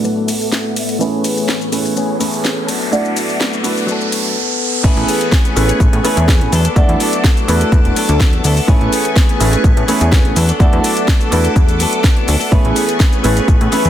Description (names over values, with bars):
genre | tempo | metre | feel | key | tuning
filtered disco house | 125 BPM | 4/4 | straight | A major | A4 = 440 Hz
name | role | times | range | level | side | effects
warm concert grand piano | accompaniment | 0.0-13.9 s | A3 to D5 | -19 LUFS | right 3 dB | phaser, sidechain pumping, low-pass filter
string machine, full ensemble | sustained chords | 0.0-13.9 s | A3 to D6 | -23 LUFS | equal | phaser, ensemble chorus, sidechain pumping, low-pass filter
direct-recorded clean electric guitar | riff | 0.0-13.9 s | E3 to A4 | -22 LUFS | left 7 dB | spring reverb, sidechain pumping, low-pass filter
house drum kit | drums | 0.0-13.9 s | crash cymbal, hi-hat, shaker, snare drum | -20 LUFS | equal | sidechain pumping on hats, studio reverb, sidechain pumping on cymbals, sidechain pumping on perc
riser | sound effects | 1.9-4.8 s | none | -22 LUFS | right 1 dB | none
plucky analog bass | bass | 4.8-13.9 s | E1 to A2 | -15 LUFS | equal | sidechain pumping, low-pass filter
electronic kick drum | drums | 4.8-13.6 s | none | -12 LUFS | equal | studio reverb
room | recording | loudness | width
light reverb, digital ambience | dense, heavily limited modern master | -11 LUFS | side -11 dB against mid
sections
0.0-4.8 A section; 4.8-13.9 B section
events
filter sweep 0.0-4.8; riser 1.9-4.8; drop 4.8-13.9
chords
0.0 E9sus4; 1.0 Amaj9; 2.7 E9sus4; 4.8 Amaj9; 6.5 E9sus4; 8.7 Amaj9; 10.4 E9sus4; 12.5 Amaj9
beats
0.04 0.52 | 1.00 1.48 1.96 2.44 | 2.92 3.40 3.88 4.36 | 4.84 5.32 5.80 6.28 | 6.76 7.24 7.72 8.20 | 8.68 9.16 9.64 10.12 | 10.60 11.08 11.56 12.04 | 12.52 13.00 13.48